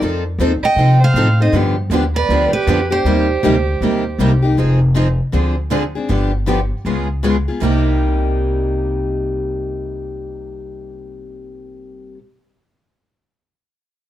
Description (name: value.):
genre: acoustic string swing (jazz manouche).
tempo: 158 BPM.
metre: 4/4.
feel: swing 61% on 8ths.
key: C minor.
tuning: A4 = 437 Hz.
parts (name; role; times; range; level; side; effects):
picked steel-string acoustic guitar; accompaniment; 0.0-12.2 s; C3 to A4; -21 LUFS; left 4 dB; none.
picked steel-string acoustic guitar; accompaniment; 0.0-12.2 s; C3 to A4; -23 LUFS; right 6 dB; none.
upright bass; bass; 0.0-12.1 s; F1 to C3; -17 LUFS; equal; none.
picked steel-string acoustic guitar; melody; 0.6-4.4 s; B4 to G5; -20 LUFS; right 3 dB; none.
warm violin; second line; 0.6-4.4 s; G4 to Eb5; -22 LUFS; right 5 dB; none.
room: light reverb.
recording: none.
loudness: -14 LUFS.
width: side -12 dB against mid.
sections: 0.0-4.6 A section; 4.6-7.6 B section; 7.6-10.7 C section.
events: none.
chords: 0.0 F7; 1.5 G7; 3.1 Cm7; 4.6 Fm7; 5.3 Dm7b5; 6.1 G7; 6.9 Db7; 7.6 Cm7.